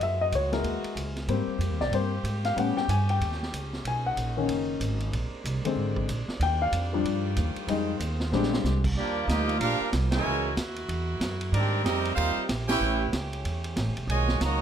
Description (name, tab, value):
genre	jazz, big band swing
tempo	188 BPM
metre	4/4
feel	swing 62% on 8ths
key	unclear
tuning	A4 = 440 Hz
part	dark baby grand piano	accompaniment	0.0-8.8 s	D3 to Ab5	-28 LUFS	left 5 dB	none
part	edgy saxophone section	sustained chords	0.0-14.6 s	C3 to G4	-38 LUFS	right 1 dB	none
part	upright bass	bass	0.0-14.6 s	E1 to A2	-29 LUFS	right 1 dB	none
part	vintage drum kit	drums	0.0-14.5 s	crash cymbal, hi-hat, kick drum, ride cymbal, snare drum	-35 LUFS	right 1 dB	none
part	bright trumpet section	melody	9.0-14.6 s	Bb3 to A#5	-28 LUFS	right 2 dB	none
part	bright trombone section	second line	9.0-14.6 s	A#2 to G4	-32 LUFS	right 5 dB	none
room	light reverb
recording	close, detailed microphones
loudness	-25 LUFS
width	side -9 dB against mid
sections	0.0-9.0 A section; 9.0-14.6 B section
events	grand piano solo 0.0-9.0; drum fill 8.3-8.7; band accent 10.1, 12.6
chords	0.0 Gb9; 1.3 Abmaj9; 2.6 A9; 3.8 Bmaj9; 5.1 Bb9; 6.4 Ebmaj9; 7.7 Fm7; 8.3 Bb13; 9.0 Ebmaj9; 10.3 Gb9; 11.5 Abmaj9; 12.8 A9; 14.1 Bmaj9